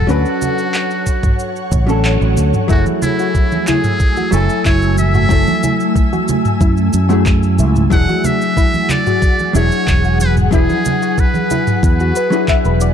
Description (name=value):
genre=sunset chillout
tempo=92 BPM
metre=4/4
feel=straight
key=F# minor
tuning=A4 = 440 Hz
part: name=trumpet with metal mute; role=melody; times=0.0-12.8 s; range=E4 to F#5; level=-21 LUFS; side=equal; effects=tape echo
part: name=vintage hollow-body jazz guitar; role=accompaniment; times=0.0-12.9 s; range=F#3 to G#5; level=-19 LUFS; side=left 2 dB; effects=auto-pan, tape echo
part: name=ethereal airy pad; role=sustained chords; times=0.0-12.9 s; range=A3 to E6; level=-23 LUFS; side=right 1 dB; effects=ensemble chorus, built-in reverb
part: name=fingered electric bass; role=bass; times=0.0-12.9 s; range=E1 to F#2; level=-14 LUFS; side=equal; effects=none
part: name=smooth R&B drum kit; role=drums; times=0.1-12.9 s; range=cabasa, handclaps, toms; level=-22 LUFS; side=right 1 dB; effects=none
part: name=congas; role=percussion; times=0.4-11.6 s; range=none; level=-22 LUFS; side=right 4 dB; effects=none
part: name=electronic kick drum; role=drums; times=1.1-12.6 s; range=none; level=-14 LUFS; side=equal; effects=none
part: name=soft round pluck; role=arpeggios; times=2.7-12.9 s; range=E4 to E5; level=-23 LUFS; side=left 3 dB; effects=analog chorus, cassette tape, tape echo
room=digital ambience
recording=dark, warm production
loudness=-12 LUFS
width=side -8 dB against mid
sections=0.0-2.7 A section; 2.7-12.9 B section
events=band accent 2.0-2.4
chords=0.1 Dmaj7; 2.7 F#m9; 7.9 E9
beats=| 0.09 0.74 1.40 2.05 | 2.70 3.35 4.01 4.66 | 5.31 5.96 6.62 7.27 | 7.92 8.57 9.22 9.88 | 10.53 11.18 11.83 12.48